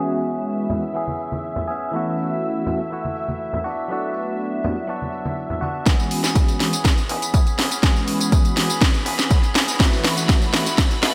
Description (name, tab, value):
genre	filtered disco house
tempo	122 BPM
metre	4/4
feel	straight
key	E major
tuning	A4 = 440 Hz
part	mellow synth brass	accompaniment	0.0-10.7 s	E3 to F#4	-29 LUFS	equal	chorus, phaser, sidechain pumping, low-pass filter
part	string machine, full ensemble	sustained chords	0.0-11.1 s	E5 to B5	-33 LUFS	equal	ensemble chorus, sidechain pumping, low-pass filter
part	direct-recorded clean electric guitar	riff	0.0-11.1 s	E3 to G#4	-30 LUFS	equal	spring reverb, sidechain pumping, low-pass filter
part	tambourine and congas	percussion	0.2-5.8 s	none	-31 LUFS	equal	sidechain pumping on perc, low-pass filter on perc
part	plucky analog bass	bass	5.9-11.1 s	E1 to B2	-36 LUFS	equal	none
part	electronic kick drum	drums	5.9-10.9 s	none	-20 LUFS	equal	overdrive, studio reverb
part	house drum kit	drums	5.9-11.1 s	hi-hat, snare drum, tambourine	-23 LUFS	equal	overdrive, studio reverb, sidechain pumping on hats, sidechain pumping on perc, gated reverb
room	moderate lush hall reverb, RT60 2.1 s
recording	bright 1980s-style digital production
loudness	-21 LUFS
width	mono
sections	0.0-5.9 A section; 5.9-11.1 B section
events	filter sweep 0.0-5.9, 5.9-11.1; build-up 5.9-11.1; drum fill 5.9-11.1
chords	0.0 E6; 1.9 B7sus4; 3.7 Gmaj7 (rootless); 5.9 E6; 9.8 B7sus4